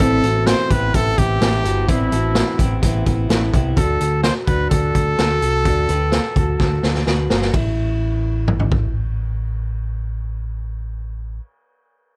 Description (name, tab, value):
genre	jangly indie pop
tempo	127 BPM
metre	4/4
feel	straight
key	A dorian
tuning	A4 = 439 Hz
part	brilliant trumpet	melody	0.0-7.0 s	E4 to C5	-24 LUFS	equal	none
part	direct-recorded clean electric guitar	accompaniment	0.0-3.8 s	A2 to E4	-29 LUFS	equal	none
part	electric guitar through a small old amp	arpeggios	0.0-8.9 s	C4 to B4	-27 LUFS	equal	none
part	picked electric bass	bass	0.0-11.4 s	G1 to D2	-24 LUFS	equal	none
part	raw garage drum kit	drums	0.0-8.8 s	hi-hat, kick drum, ride cymbal, snare drum, toms	-22 LUFS	equal	none
room	light reverb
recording	dark, warm production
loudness	-19 LUFS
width	mono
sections	0.0-7.5 A section; 7.5-11.3 B section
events	drum fill 6.6-7.5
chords	0.0 Amadd9; 3.8 D; 7.5 A5